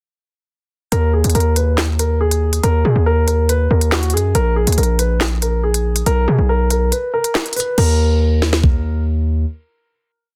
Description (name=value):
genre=hip hop, drill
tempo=140 BPM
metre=4/4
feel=half-time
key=Eb minor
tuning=A4 = 440 Hz
part: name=dark concert grand piano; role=melody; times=0.9-9.0 s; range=Gb4 to Cb5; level=-22 LUFS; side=equal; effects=low-pass filter
part: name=distorted 808-style bass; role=bass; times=0.9-9.5 s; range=Bb1 to Cb3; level=-18 LUFS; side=equal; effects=distortion
part: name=drill drum kit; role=drums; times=0.9-8.7 s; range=crash cymbal, handclaps, hi-hat, kick drum, snare drum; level=-21 LUFS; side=equal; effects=none
room=little or no reverb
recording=dense, heavily limited modern master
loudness=-16 LUFS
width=mono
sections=0.9-7.8 verse; 7.8-10.4 final chord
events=break 6.9-7.8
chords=0.9 Eb5; 4.3 Bb7(no3); 6.1 Abmadd9/Cb (rootless); 7.8 Eb5